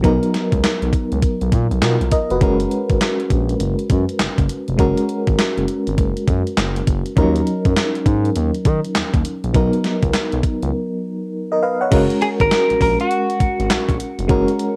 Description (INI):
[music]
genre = R&B, new jack swing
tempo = 101 BPM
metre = 4/4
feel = swing 63% on 16ths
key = F# major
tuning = A4 = 440 Hz
[part]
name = FM electric piano with tremolo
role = accompaniment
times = 0.0-14.8 s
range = E#3 to F#5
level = -22 LUFS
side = equal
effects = none
[part]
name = smooth gliding synth bass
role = bass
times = 0.0-14.4 s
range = E#1 to D#3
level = -24 LUFS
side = equal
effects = none
[part]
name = crisp 8-bit digital drum machine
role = drums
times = 0.0-14.8 s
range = crash cymbal, handclaps, hi-hat, kick drum, snare drum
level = -21 LUFS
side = equal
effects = overdrive, gated reverb
[part]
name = direct-recorded clean electric guitar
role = melody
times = 12.2-14.0 s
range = F#4 to A#4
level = -21 LUFS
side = equal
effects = lush chorus
[sound]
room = light reverb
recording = cassette tape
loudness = -18 LUFS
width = mono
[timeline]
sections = 0.0-11.9 A section; 11.9-14.8 B section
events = break 10.7-11.9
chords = 0.0 Bmaj7; 2.4 F#add9; 7.2 D#m7; 9.5 Bmaj7; 11.9 F#add9